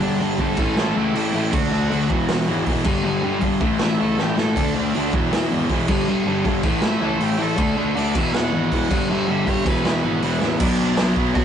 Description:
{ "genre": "punk rock", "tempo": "159 BPM", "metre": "4/4", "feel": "straight", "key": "unclear", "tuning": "A4 = 436 Hz", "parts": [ { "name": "overdriven electric guitar", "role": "melody", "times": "0.0-11.4 s", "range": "F#3 to F#5", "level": "-29 LUFS", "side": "right 3 dB", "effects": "none" }, { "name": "distorted electric guitar", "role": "riff", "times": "0.0-11.4 s", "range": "E2 to D4", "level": "-25 LUFS", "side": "right 6 dB", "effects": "distortion" }, { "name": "sludgy distorted guitar", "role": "riff", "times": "0.0-11.4 s", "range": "E2 to D4", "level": "-21 LUFS", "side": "left 4 dB", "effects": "overdrive" }, { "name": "fuzz picked electric bass", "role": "bass", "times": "0.0-11.4 s", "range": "E1 to D2", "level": "-29 LUFS", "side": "right 1 dB", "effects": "overdrive" }, { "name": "raw garage drum kit", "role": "drums", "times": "0.0-11.4 s", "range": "crash cymbal, hi-hat, kick drum, snare drum", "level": "-24 LUFS", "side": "right 1 dB", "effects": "none" } ], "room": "light reverb", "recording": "rough rehearsal-room recording, warm saturation, nothing above 10.4 kHz", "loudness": "-18 LUFS", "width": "side -8 dB against mid", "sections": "0.0-10.6 A section", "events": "half time 0.0-10.6; drum fill 4.2-4.6, 10.4", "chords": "0.0 G5; 0.6 A; 1.5 D; 2.1 E; 2.9 G5; 3.6 A; 4.6 D5; 5.1 E; 5.9 G5; 6.6 A; 7.6 D5; 8.2 E; 8.9 G5; 9.7 E; 10.6 Bm" }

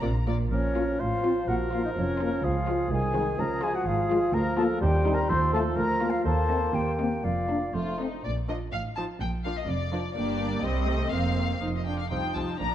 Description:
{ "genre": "quick classical-period movement for symphony orchestra", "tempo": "125 BPM", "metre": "2/4", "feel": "straight", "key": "Bb minor, Bb major from 4.3 s", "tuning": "A4 = 440 Hz", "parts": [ { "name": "muted chamber violin section", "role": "melody", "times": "0.0-12.7 s", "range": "C4 to Bb5", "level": "-36 LUFS", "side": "left 5 dB", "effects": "none" }, { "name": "muted chamber violin section", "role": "second line", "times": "0.0-12.7 s", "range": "Ab3 to Bb5", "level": "-44 LUFS", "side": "left 3 dB", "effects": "none" }, { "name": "muted chamber viola section", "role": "accompaniment", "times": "0.0-12.7 s", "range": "Eb3 to F4", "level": "-35 LUFS", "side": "equal", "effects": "none" }, { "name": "muted chamber cello section", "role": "bass", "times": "0.0-12.7 s", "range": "C2 to C3", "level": "-33 LUFS", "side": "right 2 dB", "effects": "none" }, { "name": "muted chamber double bass section", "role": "bass", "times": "0.0-12.7 s", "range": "F1 to Eb2", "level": "-31 LUFS", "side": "right 2 dB", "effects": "none" }, { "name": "mellow clarinet", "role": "second line", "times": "0.5-7.7 s", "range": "Db4 to C5", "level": "-33 LUFS", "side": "left 2 dB", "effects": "none" }, { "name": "mellow concert flute", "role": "second line", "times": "0.5-7.7 s", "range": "Db5 to C6", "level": "-31 LUFS", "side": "left 2 dB", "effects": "none" }, { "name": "warm oboe", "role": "second line", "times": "0.5-8.0 s", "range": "Ab4 to D5", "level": "-37 LUFS", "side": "equal", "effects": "none" }, { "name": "dark bassoon", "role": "accompaniment", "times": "0.5-8.0 s", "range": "Eb3 to Bb3", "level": "-32 LUFS", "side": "right 1 dB", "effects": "none" }, { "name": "dark French horn section", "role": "sustained chords", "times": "0.8-8.1 s", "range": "Ab3 to F4", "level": "-32 LUFS", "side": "left 3 dB", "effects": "none" } ], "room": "moderate scoring stage reverb, RT60 1.9 s", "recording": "dark, warm production", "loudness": "-24 LUFS", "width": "side -11 dB against mid", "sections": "0.5-8.2 A section; 8.2-12.7 B section", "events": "none", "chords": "0.0 Bb; 0.5 Bbm; 1.0 F/A; 1.5 Bbm; 2.4 Db; 2.9 Ab/C; 3.4 Db; 4.3 Bb/D; 4.8 Cm/Eb; 5.3 F7/Eb; 5.8 Bb/D; 6.3 Cm7/Eb; 7.2 Bb/F; 7.7 F; 8.2 Bb; 8.7 F7/A; 9.2 Bb; 10.2 Gm; 10.6 Cm; 11.1 Fsus4; 11.6 F5; 12.1 F7/C" }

